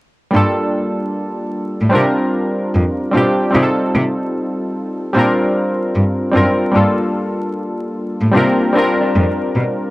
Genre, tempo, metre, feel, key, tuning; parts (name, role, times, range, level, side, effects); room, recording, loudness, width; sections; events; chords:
lo-fi hip hop; 75 BPM; 4/4; swing 65% on 16ths; G minor; A4 = 442 Hz
warm analog keys; accompaniment; 0.3-9.9 s; G3 to Bb4; -15 LUFS; equal; chorus
rich cello; bass; 0.3-9.6 s; F2 to C3; -16 LUFS; equal
mellow electric guitar; second line; 8.3-9.9 s; Bb3 to D5; -21 LUFS; left 1 dB; analog delay
moderate spring reverb, RT60 2.3 s; worn, warbling old tape, cassette tape, vinyl crackle, warbly pitch drift; -14 LUFS; side -19 dB against mid
0.3-6.7 A section; 6.7-9.9 B section
0.3 Gm9; 1.9 C9sus4; 3.5 F9/C; 5.1 Bb69; 6.7 Gm9; 8.3 C9sus4